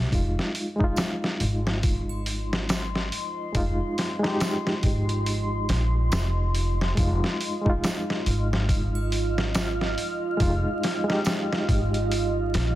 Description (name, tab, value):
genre	trip hop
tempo	70 BPM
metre	4/4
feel	swing 60% on 16ths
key	F minor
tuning	A4 = 437 Hz
part	bright reed electric piano	accompaniment	0.0-12.8 s	Ab3 to G4	-30 LUFS	equal	fast tremolo, tape echo
part	upright bass	bass	0.0-12.8 s	F1 to Bb1	-26 LUFS	equal	none
part	deep dark ambient pad	sustained chords	1.6-12.8 s	F4 to F6	-31 LUFS	right 2 dB	chorus, built-in reverb
part	trip hop sampler-style drum kit	drums	0.1-12.8 s	hi-hat, kick drum, snare drum	-27 LUFS	equal	soft clipping on snare, studio reverb
part	tambourine and triangle	percussion	1.0-11.5 s	none	-42 LUFS	right 5 dB	none
room	digital ambience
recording	dense, heavily limited modern master, vinyl crackle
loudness	-23 LUFS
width	side -14 dB against mid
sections	0.0-12.8 A section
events	none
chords	0.0 Fm7